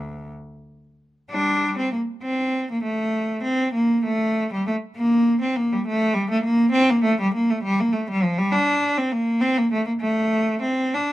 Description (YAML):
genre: classical, baroque-style suite movement for unaccompanied cello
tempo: 66 BPM (dotted quarters)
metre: 12/8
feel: rubato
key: unclear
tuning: A4 = 440 Hz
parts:
  - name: rich cello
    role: solo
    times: 0.0-11.1 s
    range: D2 to D4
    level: -20 LUFS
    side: equal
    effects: none
room: little or no reverb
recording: close, detailed microphones, lossy compression artefacts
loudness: -19 LUFS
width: side -15 dB against mid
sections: 0.0-1.3 A section; 1.3-11.1 A section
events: none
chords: none